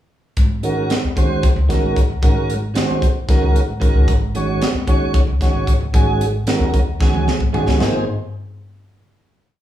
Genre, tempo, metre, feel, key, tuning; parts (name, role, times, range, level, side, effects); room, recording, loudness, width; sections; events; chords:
electric jazz fusion; 226 BPM (eighths); 7/8; straight; Ab mixolydian; A4 = 444 Hz
upright bass; bass; 0.4-8.0 s; Ab1 to Eb2; -20 LUFS; equal
crisp fusion drum kit; drums; 0.4-7.9 s; china cymbal, hi-hat, kick drum, snare drum, toms; -18 LUFS; equal
mellow tonewheel organ; accompaniment; 0.6-8.0 s; Eb3 to Db5; -20 LUFS; right 2 dB; slow rotary speaker
moderate large studio reverb, RT60 0.9 s; band playing live in one room, studio reverb; -15 LUFS; side -12 dB against mid
0.4-7.8 groove; 7.8-9.6 final chord
drum fill 7.0-7.8
0.4 Ab9sus4; 7.8 Ab